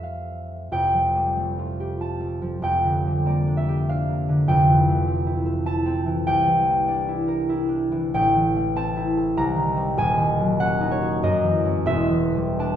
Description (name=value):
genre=classical, solo harp piece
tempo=78-103 BPM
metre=3/4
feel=rubato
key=F major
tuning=A4 = 440 Hz
part: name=concert harp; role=solo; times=0.0-12.8 s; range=Eb1 to Bb5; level=-20 LUFS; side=equal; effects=none
room=wet recital hall reverb, RT60 1.6 s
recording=heard from further back in the room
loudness=-20 LUFS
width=side -10 dB against mid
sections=0.7-12.8 A section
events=none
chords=0.0 Fmaj9; 0.7 Fadd9; 2.6 Gm7/F; 4.5 Fmaj7; 6.3 C9; 8.2 Am7; 9.4 Cm7; 10.0 Ebm7; 11.2 F#m7; 11.9 Em7